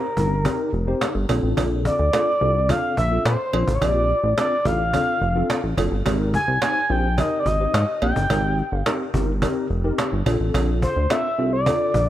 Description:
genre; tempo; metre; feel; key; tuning
early-eighties boogie funk; 107 BPM; 4/4; straight; unclear; A4 = 440 Hz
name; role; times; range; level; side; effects
expressive synth lead; melody; 0.0-12.1 s; Bb4 to Ab5; -22 LUFS; equal; chorus
tine electric piano; accompaniment; 0.0-11.9 s; C4 to C5; -26 LUFS; left 1 dB; ensemble chorus
chorused synth bass; bass; 0.2-12.1 s; F1 to Bb2; -22 LUFS; equal; none
cajon; drums; 0.2-12.1 s; none; -27 LUFS; equal; none
cowbell; percussion; 0.5-11.8 s; none; -31 LUFS; right 6 dB; none
room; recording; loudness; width
moderate plate reverb, RT60 2.1 s; bright 1980s-style digital production; -19 LUFS; side -12 dB against mid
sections
0.0-12.1 A section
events
none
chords
0.0 Abmaj9 (rootless); 1.3 Bbmaj9; 6.1 Abmaj9; 10.3 Bbmaj9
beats
0.45 1.01 | 1.57 2.13 2.69 3.25 | 3.81 4.38 4.94 5.50 | 6.06 6.62 7.18 7.74 | 8.30 8.86 9.42 9.98 | 10.54 11.10 11.66

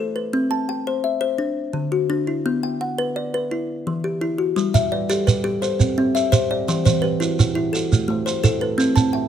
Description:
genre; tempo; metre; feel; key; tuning
southern african traditional, mbira-style interlocking cycle; 114 BPM (dotted quarters); 12/8; straight; G major; A4 = 441 Hz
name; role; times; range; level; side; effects
kalimba; arpeggios; 0.0-9.3 s; D3 to A5; -21 LUFS; left 3 dB; none
shekere; percussion; 4.6-9.1 s; none; -21 LUFS; right 4 dB; none
kalimba; arpeggios; 4.7-9.3 s; E3 to E5; -24 LUFS; right 6 dB; none
room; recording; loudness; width
light reverb; close, detailed microphones; -18 LUFS; side -9 dB against mid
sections
0.0-4.6 A section; 4.6-9.3 B section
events
none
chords
0.3 C; 1.4 D; 2.5 Bm; 3.5 Em; 4.6 G; 5.6 C; 6.7 Em; 7.7 Am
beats
| 0.33 0.86 1.39 1.92 | 2.45 2.98 3.51 4.04 | 4.57 5.10 5.63 6.16 | 6.68 7.21 7.74 8.26 | 8.79

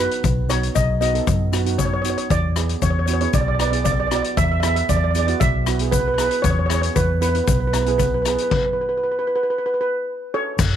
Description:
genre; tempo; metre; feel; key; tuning
calypso; 116 BPM; 4/4; straight; unclear; A4 = 442 Hz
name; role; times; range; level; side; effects
steel pan; melody; 0.0-10.8 s; A4 to E5; -22 LUFS; right 1 dB; none
steel pan; accompaniment; 0.0-8.5 s; B3 to B4; -27 LUFS; right 11 dB; none
vintage muted fingered electric bass; bass; 0.0-10.8 s; F#1 to F#2; -22 LUFS; equal; none
street-band drum kit; drums; 0.1-10.7 s; crash cymbal, hi-hat, kick drum, rim click; -23 LUFS; left 3 dB; none
egg shaker; percussion; 0.2-10.7 s; none; -34 LUFS; left 20 dB; none
room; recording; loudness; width
light reverb, studio reverb; 1960s-style stereo with parts hard left and right; -17 LUFS; side -10 dB against mid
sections
0.0-10.6 A section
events
stop 8.5-10.6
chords
0.0 B; 2.3 E7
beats
| 0.23 0.75 1.27 1.79 | 2.30 2.82 3.34 3.86 | 4.37 4.89 5.41 5.93 | 6.44 6.96 7.48 8.00 | 8.51 9.03 9.55 10.07 | 10.58

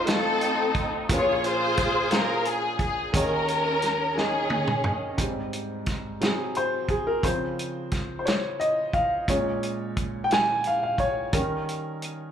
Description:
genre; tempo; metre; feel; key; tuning
slow gospel; 58 BPM (dotted quarters); 6/8; straight; Ab major; A4 = 440 Hz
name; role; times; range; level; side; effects
warm studio string section; melody; 0.0-5.2 s; C4 to Db5; -24 LUFS; left 1 dB; slapback echo
warm upright piano; accompaniment; 0.0-12.3 s; A1 to C6; -27 LUFS; equal; slapback echo
warm soul drum kit; drums; 0.1-12.2 s; hi-hat, kick drum, snare drum, toms; -28 LUFS; right 1 dB; none
room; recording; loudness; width
light reverb, studio reverb; live gig heard through the venue's PA, club reverb; -23 LUFS; side -8 dB against mid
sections
0.0-5.2 A section; 5.2-12.3 B section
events
drum fill 4.2-5.2; upright piano solo 5.2-12.3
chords
0.0 F7/A; 1.1 Bbm9; 3.1 Eb7sus4; 5.2 Abmaj7; 6.2 Ab9/C; 7.2 Dbmaj7; 9.3 Bbm7; 11.3 Eb7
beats
0.07 | 1.09 2.11 | 3.13 4.16 | 5.18 6.21 | 7.23 8.26 | 9.28 10.31 | 11.34

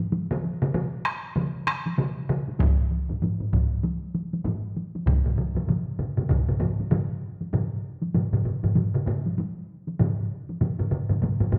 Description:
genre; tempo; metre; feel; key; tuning
japanese traditional, taiko drum ensemble; 97 BPM; 4/4; swing 60% on 16ths; none; none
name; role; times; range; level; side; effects
taiko ensemble; percussion; 0.1-11.4 s; none; -32 LUFS; equal; none
taiko ensemble; percussion; 0.3-11.6 s; none; -30 LUFS; equal; none
solo taiko drums; percussion; 2.6-6.5 s; none; -28 LUFS; equal; none
taiko ensemble; percussion; 2.6-11.6 s; none; -30 LUFS; equal; none
room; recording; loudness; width
wet recital hall reverb, RT60 1.3 s; none; -26 LUFS; mono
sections
0.0-7.5 A section; 7.5-11.6 B section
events
none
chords
none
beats
| 0.12 0.74 1.36 1.98 | 2.60 3.22 3.83 4.45 | 5.07 5.69 6.30 6.92 | 7.54 8.15 8.77 9.38 | 10.00 10.61 11.22

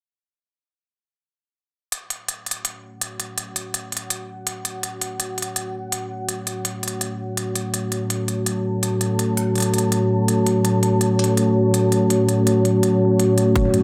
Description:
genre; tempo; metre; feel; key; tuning
half-time drum and bass; 165 BPM; 4/4; half-time; F# minor; A4 = 444 Hz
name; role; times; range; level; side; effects
dark analog pad; sustained chords; 2.8-13.8 s; A3 to A5; -22 LUFS; equal; chorus, sidechain pumping
organic electronic drum kit; drums; 1.9-13.8 s; hi-hat, toms; -28 LUFS; equal; overdrive
electronic kick drum; drums; 13.6 s; none; -22 LUFS; equal; none
room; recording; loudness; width
moderate plate reverb, RT60 1.1 s; dreamy mix soaked in reverb; -21 LUFS; mono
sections
1.9-13.8 A section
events
filter sweep on analog synth pad 1.9-13.8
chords
1.9 F#m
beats
| 1.92 2.29 2.65 3.01 | 3.38 3.74 4.10 4.47 | 4.83 5.20 5.56 5.92 | 6.29 6.65 7.01 7.38 | 7.74 8.10 8.47 8.83 | 9.20 9.56 9.92 10.29 | 10.65 11.01 11.38 11.74 | 12.10 12.47 12.83 13.20 | 13.56

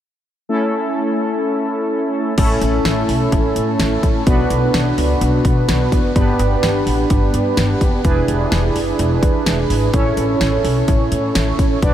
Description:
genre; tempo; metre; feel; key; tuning
synth-pop; 127 BPM; 4/4; straight; unclear; A4 = 442 Hz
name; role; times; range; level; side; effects
analog synth brass; accompaniment; 0.5-11.9 s; A3 to D5; -17 LUFS; right 1 dB; chorus
upright bass; bass; 2.4-11.9 s; E1 to B2; -19 LUFS; equal; none
pop drum kit; drums; 2.4-11.9 s; crash cymbal, hi-hat, kick drum, snare drum; -19 LUFS; equal; none
room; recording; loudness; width
moderate huge ambient reverb, RT60 7.5 s; dreamy mix soaked in reverb; -14 LUFS; side -11 dB against mid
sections
0.5-2.4 A section; 2.4-11.9 B section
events
none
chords
0.5 A; 4.3 Bm; 6.2 G; 8.0 E7; 9.9 A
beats
| 0.49 0.96 1.43 1.91 | 2.38 2.85 3.32 3.80 | 4.27 4.74 5.21 5.68 | 6.16 6.63 7.10 7.58 | 8.05 8.52 8.99 9.46 | 9.94 10.41 10.88 11.36 | 11.83

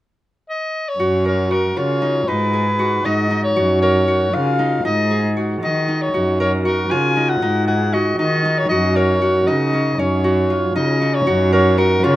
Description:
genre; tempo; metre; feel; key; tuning
contemporary instrumental, chamber music in an uneven meter; 234 BPM (eighths); 5/8; straight; F# major; A4 = 445 Hz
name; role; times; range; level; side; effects
clear soprano saxophone; melody; 0.5-12.2 s; A#4 to G#5; -20 LUFS; left 1 dB; none
concert harp; arpeggios; 1.0-12.2 s; C#4 to A#4; -20 LUFS; equal; none
warm cello; bass; 1.0-12.2 s; F#2 to D#3; -19 LUFS; equal; none
room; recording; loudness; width
light reverb; none; -15 LUFS; side -15 dB against mid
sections
1.0-11.3 A section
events
none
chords
0.0 N.C.; 1.0 F#; 2.3 G#m7; 3.6 F#; 4.9 G#5; 6.1 F#; 7.4 G#5; 8.7 F#; 10.0 F#5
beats
0.23 0.48 0.74 | 1.00 1.25 1.51 1.77 2.02 | 2.28 2.54 2.80 3.05 3.31 | 3.57 3.82 4.08 4.34 4.59 | 4.85 5.11 5.36 5.62 5.88 | 6.13 6.39 6.65 6.91 7.16 | 7.42 7.67 7.93 8.19 8.45 | 8.70 8.96 9.21 9.47 9.73 | 9.98 10.24 10.50 10.75 11.01 | 11.27 11.52 11.78 12.04

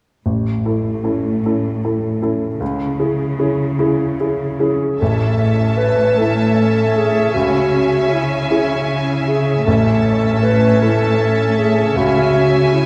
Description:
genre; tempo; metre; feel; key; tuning
cinematic, emotional film score for orchestra; 52 BPM (dotted quarters); 6/8; rubato; A major; A4 = 443 Hz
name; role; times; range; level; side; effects
rich symphonic cello section; bass; 0.2-12.9 s; A2 to C#3; -22 LUFS; equal; none
clear baby grand piano; accompaniment; 0.3-12.9 s; A1 to A4; -22 LUFS; equal; none
dark clarinet; second line; 3.8-12.9 s; E4 to B4; -21 LUFS; equal; none
rich symphonic violin section; melody; 5.0-12.9 s; G#5 to A5; -31 LUFS; equal; none
warm symphonic violin section; second line; 5.0-12.9 s; E5; -25 LUFS; equal; none
rich chamber viola section; accompaniment; 5.0-12.9 s; C#4; -28 LUFS; equal; none
room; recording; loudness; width
wet church reverb, RT60 3.1 s; recorded in a church or concert hall; -16 LUFS; mono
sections
0.3-5.0 A section; 5.0-12.9 B section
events
none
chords
0.3 A; 2.6 C#m; 5.0 A; 7.4 C#m; 9.7 A; 12.0 C#m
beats
| 0.26 1.44 | 2.61 3.79 | 5.01 6.19 | 7.35 8.51 | 9.67 10.83 | 11.97

